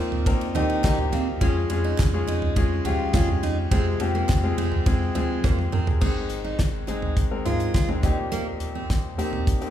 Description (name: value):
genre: piano-driven pop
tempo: 104 BPM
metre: 4/4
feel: straight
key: Ab major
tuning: A4 = 435 Hz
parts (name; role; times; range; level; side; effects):
- clear upright piano; accompaniment; 0.0-9.7 s; Ab2 to Bb5; -27 LUFS; left 3 dB; none
- picked steel-string acoustic guitar; riff; 0.0-9.5 s; Bb3 to F4; -31 LUFS; right 4 dB; none
- round analog bass; bass; 0.0-9.7 s; Ab1 to F3; -28 LUFS; equal; none
- damped 70s drum kit; drums; 0.1-9.7 s; crash cymbal, hi-hat, kick drum, ride cymbal, snare drum, toms; -24 LUFS; right 1 dB; none
- group handclap; percussion; 0.8-5.6 s; none; -43 LUFS; right 4 dB; none
room: moderate recital hall reverb, RT60 1.6 s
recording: recorded in a church or concert hall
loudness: -21 LUFS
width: side -11 dB against mid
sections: 0.0-6.0 A section; 6.0-9.7 B section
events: upright piano fill 0.6-1.4; drum fill 5.4-6.0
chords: 0.0 Eb6; 1.4 Db/F; 3.7 Fm; 6.0 Ab; 8.0 Eb6